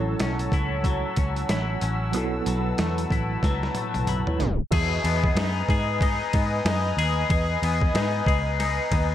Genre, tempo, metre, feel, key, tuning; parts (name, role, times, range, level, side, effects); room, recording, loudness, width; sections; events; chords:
indie pop, bedroom pop; 93 BPM; 4/4; swing 60% on 16ths; E major; A4 = 441 Hz
tine electric piano; accompaniment; 0.0-4.9 s; F#3 to D#5; -32 LUFS; right 5 dB; overdrive, fast stereo tremolo, analog delay
twangy electric guitar; accompaniment; 0.0-9.1 s; A2 to G#4; -29 LUFS; left 7 dB; wide subtle chorus, warbly pitch drift, analog delay
warm analog pad; sustained chords; 0.0-9.1 s; B4 to E6; -30 LUFS; left 1 dB; chorus
vintage muted picked electric bass; bass; 0.0-9.1 s; A1 to G#2; -26 LUFS; equal
boom bap sampler-style drum kit; drums; 0.2-9.1 s; crash cymbal, hi-hat, kick drum, ride cymbal, snare drum, toms; -26 LUFS; equal
light reverb, digital ambience; echo-heavy mix, tape stop; -22 LUFS; side -11 dB against mid
0.0-4.7 A section; 4.7-9.1 B section
drum fill 3.4-4.7; tape stop 4.4-4.7
0.0 A6; 2.1 B7sus4; 4.7 Emaj7